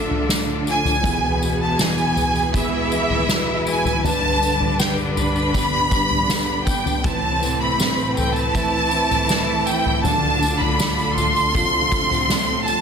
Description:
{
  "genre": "pop ballad",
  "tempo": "80 BPM",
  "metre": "4/4",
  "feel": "straight",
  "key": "A minor",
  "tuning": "A4 = 441 Hz",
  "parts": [
    { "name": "warm studio violin section", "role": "melody", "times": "0.0-12.8 s", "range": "E5 to C6", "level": "-21 LUFS", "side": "right 1 dB", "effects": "none" },
    { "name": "rich studio cello section", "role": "second line", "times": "0.0-12.8 s", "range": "B2 to E4", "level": "-27 LUFS", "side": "equal", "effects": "none" },
    { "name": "warm concert grand piano", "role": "accompaniment", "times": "0.0-12.8 s", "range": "D1 to A4", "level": "-27 LUFS", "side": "left 4 dB", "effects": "none" },
    { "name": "warm studio string section", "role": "sustained chords", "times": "0.0-12.8 s", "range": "D2 to B4", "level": "-28 LUFS", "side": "equal", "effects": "none" },
    { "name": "nylon-string guitar", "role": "arpeggios", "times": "0.0-12.8 s", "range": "A2 to B4", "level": "-30 LUFS", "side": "right 9 dB", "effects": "ping-pong delay" },
    { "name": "soft-mallet drum kit", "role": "drums", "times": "0.1-12.5 s", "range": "kick drum, snare drum, toms", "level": "-23 LUFS", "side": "equal", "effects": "none" },
    { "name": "tambourine", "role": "percussion", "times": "0.3-12.8 s", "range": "none", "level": "-32 LUFS", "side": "left 7 dB", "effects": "none" }
  ],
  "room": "light reverb, studio reverb",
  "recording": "dense, heavily limited modern master",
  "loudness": "-17 LUFS",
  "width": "side -6 dB against mid",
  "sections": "0.0-12.8 A section",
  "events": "none",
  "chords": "0.0 Dm; 1.0 E; 4.0 G; 7.0 Amadd9; 10.0 Dm"
}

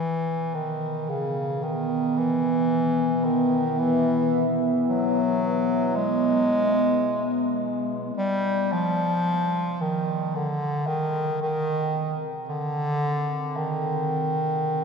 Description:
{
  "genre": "ambient",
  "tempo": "56 BPM",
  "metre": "4/4",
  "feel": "straight",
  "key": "unclear",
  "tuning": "A4 = 440 Hz",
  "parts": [
    { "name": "clear bass clarinet", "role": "melody", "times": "0.0-14.8 s", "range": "Db3 to G#3", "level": "-24 LUFS", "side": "equal", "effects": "ping-pong delay" },
    { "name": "deep dark ambient pad", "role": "sustained chords", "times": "1.3-14.8 s", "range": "B3 to G#5", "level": "-26 LUFS", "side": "equal", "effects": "chorus, built-in reverb" }
  ],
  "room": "wet cathedral reverb, RT60 5.2 s",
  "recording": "in a vast, echoing space",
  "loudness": "-22 LUFS",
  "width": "side -5 dB against mid",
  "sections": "0.0-8.2 A section; 8.2-14.8 B section",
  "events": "none",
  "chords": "0.0 E; 8.2 Ab"
}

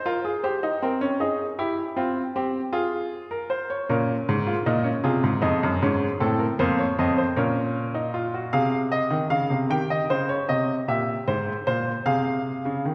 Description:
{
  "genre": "classical, baroque-style 4-part fugue for grand piano",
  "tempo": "52 BPM (dotted quarters)",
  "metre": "6/8",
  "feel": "straight",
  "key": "unclear",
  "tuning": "A4 = 441 Hz",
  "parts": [
    { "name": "clear baby grand piano", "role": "solo", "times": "0.0-12.9 s", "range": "F2 to G5", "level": "-25 LUFS", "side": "equal", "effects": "none" }
  ],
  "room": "wet concert hall reverb, RT60 1.8 s",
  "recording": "recorded in a church or concert hall",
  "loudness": "-25 LUFS",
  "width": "mono",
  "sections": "0.0-12.9 A section",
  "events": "none",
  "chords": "0.4 Eb; 1.6 C; 2.7 Fm; 3.9 Bbm; 5.1 Ab; 6.2 F7; 7.4 Bbm; 8.5 Fm/C; 9.7 Eb; 10.9 C7; 12.1 Fm/C"
}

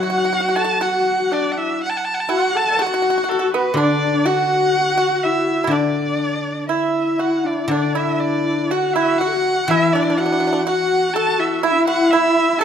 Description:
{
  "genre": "chinese traditional, Chinese chamber ensemble",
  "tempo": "61 BPM",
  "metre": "2/4",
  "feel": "rubato",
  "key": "unclear",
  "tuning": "A4 = 440 Hz",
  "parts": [
    { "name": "clear erhu", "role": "melody", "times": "0.0-12.6 s", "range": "A4 to A5", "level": "-21 LUFS", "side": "right 1 dB", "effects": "none" },
    { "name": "breathy mellow xiao", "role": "second line", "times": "0.0-12.6 s", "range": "D4 to D6", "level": "-22 LUFS", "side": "left 4 dB", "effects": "none" },
    { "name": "dark horsehead fiddle", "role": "second line", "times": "0.0-12.6 s", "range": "D4 to A4", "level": "-22 LUFS", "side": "left 3 dB", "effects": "none" },
    { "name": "pipa", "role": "second line", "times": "0.0-12.6 s", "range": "B3 to A4", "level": "-22 LUFS", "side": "right 7 dB", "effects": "none" },
    { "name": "guzheng", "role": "accompaniment", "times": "0.0-12.6 s", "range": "D3 to F#3", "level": "-26 LUFS", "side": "left 2 dB", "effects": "none" }
  ],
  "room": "moderate recital hall reverb, RT60 1.6 s",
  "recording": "none",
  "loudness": "-16 LUFS",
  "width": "side -8 dB against mid",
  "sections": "0.0-7.7 A section; 7.7-12.6 B section",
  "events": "none",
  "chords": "none"
}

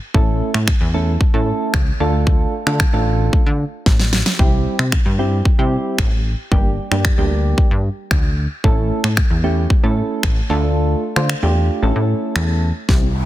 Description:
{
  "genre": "dance-pop",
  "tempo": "113 BPM",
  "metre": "4/4",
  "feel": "straight",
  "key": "D minor",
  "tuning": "A4 = 439 Hz",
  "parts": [
    { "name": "soft electric-piano-like synth keys", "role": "accompaniment", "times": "0.1-13.1 s", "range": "G3 to C5", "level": "-22 LUFS", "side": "right 2 dB", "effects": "chorus, sidechain pumping, low-pass filter" },
    { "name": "plucky analog bass", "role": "bass", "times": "0.1-13.2 s", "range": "G1 to D3", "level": "-18 LUFS", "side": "equal", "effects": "sidechain pumping" },
    { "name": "pop drum kit", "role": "drums", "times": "0.1-13.0 s", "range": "finger snaps, kick drum, snare drum", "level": "-17 LUFS", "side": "equal", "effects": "soft clipping on snare" },
    { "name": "soft round pluck", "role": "arpeggios", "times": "12.9-13.1 s", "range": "G3 to C4", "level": "-28 LUFS", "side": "left 8 dB", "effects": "none" },
    { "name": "riser", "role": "sound effects", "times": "13.0-13.3 s", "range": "none", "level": "-30 LUFS", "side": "right 1 dB", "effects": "none" }
  ],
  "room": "light reverb",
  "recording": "dense, heavily limited modern master",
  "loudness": "-15 LUFS",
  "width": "side -14 dB against mid",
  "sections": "0.0-12.9 A section",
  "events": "drum fill 3.9-4.4, 12.9-13.3; kick muted 10.8-12.9; riser 13.0",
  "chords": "0.1 A; 2.0 Dm; 4.4 C; 6.5 Gm; 8.6 A; 10.5 Dm; 11.8 A"
}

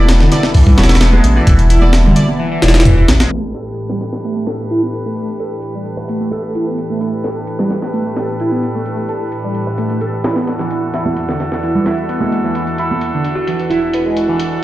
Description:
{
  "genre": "breakbeat, breaks",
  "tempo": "130 BPM",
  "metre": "4/4",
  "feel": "straight",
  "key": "unclear",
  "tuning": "A4 = 443 Hz",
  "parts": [
    { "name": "phased analog pad", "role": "sustained chords", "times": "0.0-14.6 s", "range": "E2 to B4", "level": "-23 LUFS", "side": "equal", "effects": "phaser, chorus, sidechain pumping" },
    { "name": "warm horn section", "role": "stabs", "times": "0.0-14.6 s", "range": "D4 to D5", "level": "-24 LUFS", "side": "right 2 dB", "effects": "low-pass filter, dub echo" },
    { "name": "saturated sub bass", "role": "bass", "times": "0.0-3.3 s", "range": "E1 to A1", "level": "-10 LUFS", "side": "equal", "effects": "none" },
    { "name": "breakbeat sampler-style drum kit", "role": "drums", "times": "0.1-14.5 s", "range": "hi-hat, kick drum, snare drum", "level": "-15 LUFS", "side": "equal", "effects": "high-pass filter on kick, high-pass filter on hats, high-pass filter on snare, high-pass filter on room" },
    { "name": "overdriven synth lead", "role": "riff", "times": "0.2-14.5 s", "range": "D3 to A4", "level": "-19 LUFS", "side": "equal", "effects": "phaser, tube saturation, cassette tape, dub echo" },
    { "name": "congas", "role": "percussion", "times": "0.7-2.4, 11.1-13.0 s", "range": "none", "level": "-20 LUFS", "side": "right 2 dB", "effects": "none" },
    { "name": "kalimba", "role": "melody", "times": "6.0-6.5, 9.7-9.9, 13.4-13.9 s", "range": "E4 to B4", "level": "-22 LUFS", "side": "right 2 dB", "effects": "small speaker sound, dub echo" },
    { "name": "riser", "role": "sound effects", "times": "14.5-14.6 s", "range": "none", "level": "-37 LUFS", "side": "equal", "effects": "none" }
  ],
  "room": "light reverb",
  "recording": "played on a big sound system in a bare room, large studio reverb, low-pass filter",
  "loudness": "-13 LUFS",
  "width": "side -16 dB against mid",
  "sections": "0.0-3.3 A section; 3.3-14.6 B section",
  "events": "filter sweep on analog synth lead 3.3-14.6; filter sweep on horn section 3.3-14.6; filter sweep on analog synth pad 3.3-14.6; filter sweep 3.3-14.6",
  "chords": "0.0 E9sus4; 3.3 A9sus4; 10.5 E9sus4"
}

